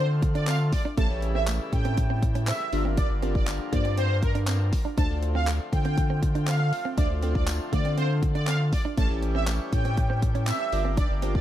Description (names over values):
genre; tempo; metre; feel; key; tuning
dance-pop; 120 BPM; 4/4; straight; D minor; A4 = 442 Hz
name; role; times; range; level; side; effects
soft supersaw; melody; 0.0-11.4 s; Bb4 to A5; -32 LUFS; right 1 dB; phaser, sidechain pumping, plate reverb, ping-pong delay
glassy digital keys; accompaniment; 0.0-11.4 s; C#4 to F5; -35 LUFS; left 1 dB; chorus, sidechain pumping, plate reverb
accordion; sustained chords; 0.0-11.4 s; C#3 to G4; -38 LUFS; equal; stereo widening, sidechain pumping, plate reverb
direct-recorded clean electric guitar; riff; 0.0-11.3 s; A3 to D4; -34 LUFS; right 6 dB; wide subtle chorus
saturated sub bass; bass; 0.0-11.4 s; G1 to D3; -26 LUFS; equal; sidechain pumping
pop drum kit; drums; 0.2-11.4 s; handclaps, hi-hat, kick drum; -27 LUFS; equal; none
tambourine; percussion; 0.5-10.6 s; none; -42 LUFS; left 7 dB; none
room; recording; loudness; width
little or no reverb; dark, warm production; -23 LUFS; side -12 dB against mid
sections
0.0-11.4 A section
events
none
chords
0.0 Dm7; 1.0 A7; 2.7 Gm7; 5.0 Dm7; 9.0 A7; 10.7 Gm7